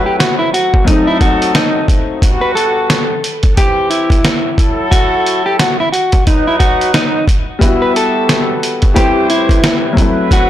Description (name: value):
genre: hip hop, boom-bap hip-hop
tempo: 89 BPM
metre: 4/4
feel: swing 60% on 16ths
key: unclear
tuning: A4 = 441 Hz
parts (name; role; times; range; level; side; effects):
- mellow electric guitar; melody; 0.0-10.5 s; D#4 to B4; -15 LUFS; equal; high-pass filter, low-pass filter, ping-pong delay
- clear upright piano; accompaniment; 0.0-2.2, 7.6-10.5 s; A2 to B4; -16 LUFS; left 3 dB; cassette tape, high-pass filter, low-pass filter
- warm horn section; stabs; 0.0-10.5 s; B2 to E5; -19 LUFS; equal; high-pass filter, low-pass filter, ping-pong delay
- trip hop sampler-style drum kit; drums; 0.2-10.5 s; hi-hat, kick drum, snare drum; -13 LUFS; equal; none
room: light reverb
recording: blown-out, overdriven recording, overdrive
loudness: -10 LUFS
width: side -12 dB against mid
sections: 0.0-10.5 A section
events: none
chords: 0.0 F#m7b5; 0.9 F#dim7; 2.2 Gmaj9/B; 3.6 C/E; 4.6 F#m7; 6.3 B/F#; 7.6 Emadd9; 9.0 Am7; 10.0 F#m7b5